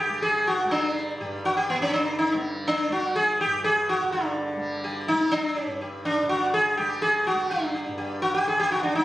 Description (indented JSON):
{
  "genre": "indian classical, Hindustani",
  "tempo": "124 BPM",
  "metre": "7/4",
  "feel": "straight",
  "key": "unclear",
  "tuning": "A4 = 440 Hz",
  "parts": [
    { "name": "sitar", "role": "melody", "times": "0.0-9.0 s", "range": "B3 to Ab4", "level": "-23 LUFS", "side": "equal", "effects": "none" },
    { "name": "tanpura", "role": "drone", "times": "0.0-9.0 s", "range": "G2 to G3", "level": "-34 LUFS", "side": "equal", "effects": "none" }
  ],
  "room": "light reverb",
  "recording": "recorded on a phone in the room, studio reverb",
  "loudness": "-22 LUFS",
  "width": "side -15 dB against mid",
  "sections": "0.0-9.0 A section",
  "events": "none",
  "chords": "none"
}